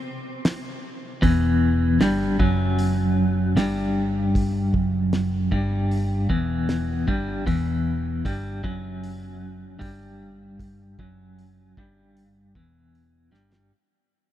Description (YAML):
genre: psychedelic rock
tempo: 77 BPM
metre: 4/4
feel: straight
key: unclear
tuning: A4 = 440 Hz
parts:
  - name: cloth-damped thuddy drum kit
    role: drums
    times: 0.5-13.7 s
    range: hi-hat, kick drum, snare drum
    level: -25 LUFS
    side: equal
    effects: none
  - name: twelve-string electric guitar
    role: riff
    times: 1.2-13.7 s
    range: E2 to G2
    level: -23 LUFS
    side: equal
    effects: tremolo
  - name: hollow-body short-scale picked electric bass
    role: bass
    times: 1.2-13.7 s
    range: E1 to G1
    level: -27 LUFS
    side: equal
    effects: none
room: light reverb, small room ambience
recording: none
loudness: -20 LUFS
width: side -12 dB against mid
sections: 0.0-13.7 A section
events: fade-out 0.0-13.7; drum fill 13.3-13.7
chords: 0.0 N.C.; 1.2 Emadd9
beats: 0.46 | 1.24 2.01 2.79 3.57 | 4.35 5.13 5.91 6.69 | 7.47 8.26 9.04 9.82 | 10.60 11.38 12.16 12.94